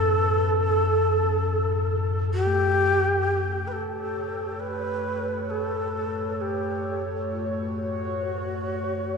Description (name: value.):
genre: dark ambient drone.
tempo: free time.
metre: none.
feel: none.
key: F# phrygian.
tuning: A4 = 440 Hz.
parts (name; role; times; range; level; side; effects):
breathy mellow shakuhachi; melody; 0.0-9.2 s; F#4 to B4; -25 LUFS; equal; tape echo.
deep dark ambient pad; sustained chords; 0.0-3.7 s; B4 to F#5; -48 LUFS; equal; none.
bronze singing bowl; arpeggios; 0.0-7.9 s; A2 to E4; -37 LUFS; left 3 dB; tape echo.
deep rumbling drone; drone; 0.0-9.2 s; F#2 to C#3; -29 LUFS; left 2 dB; built-in reverb, wide subtle chorus.
bubbling stepped-filter texture; texture; 4.2-9.2 s; C#5; -34 LUFS; right 1 dB; chorus, built-in reverb.
room: wet huge ambient reverb, RT60 7.4 s.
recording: worn, warbling old tape, cassette tape, warbly pitch drift.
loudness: -23 LUFS.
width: side -5 dB against mid.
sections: 0.0-3.7 A section; 3.7-9.2 B section.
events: none.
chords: 0.0 A13/F#; 3.7 F#m.